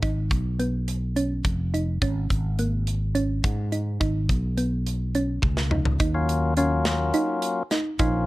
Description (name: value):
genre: progressive instrumental, band music in an uneven meter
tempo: 211 BPM (eighths)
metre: 7/8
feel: straight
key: G# dorian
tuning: A4 = 440 Hz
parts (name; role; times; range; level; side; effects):
- thumb-piano-like synth pluck; arpeggios; 0.0-8.3 s; A#3 to D#4; -28 LUFS; right 2 dB; chorus
- sustaining fretless electric bass; bass; 0.0-8.3 s; E#1 to G#2; -25 LUFS; equal; wide subtle chorus
- tight metal drum kit; drums; 0.0-8.1 s; hi-hat, kick drum, snare drum, toms; -26 LUFS; equal; none
- percussive tonewheel organ; accompaniment; 6.1-8.3 s; E#3 to E#4; -25 LUFS; left 3 dB; overdrive
room: little or no reverb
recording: dark, warm production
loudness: -22 LUFS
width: side -18 dB against mid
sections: 0.0-6.0 A section; 6.0-8.3 B section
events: drum fill 5.4-6.0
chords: 0.0 G#m; 2.0 G#sus24; 4.0 G#m; 6.0 D#m7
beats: | 0.03 0.31 0.60 0.88 1.17 1.45 1.74 | 2.02 2.30 2.59 2.87 3.16 3.44 3.73 | 4.01 4.30 4.58 4.87 5.15 5.44 5.72 | 6.00 6.29 6.58 6.86 7.14 7.43 7.71 | 8.00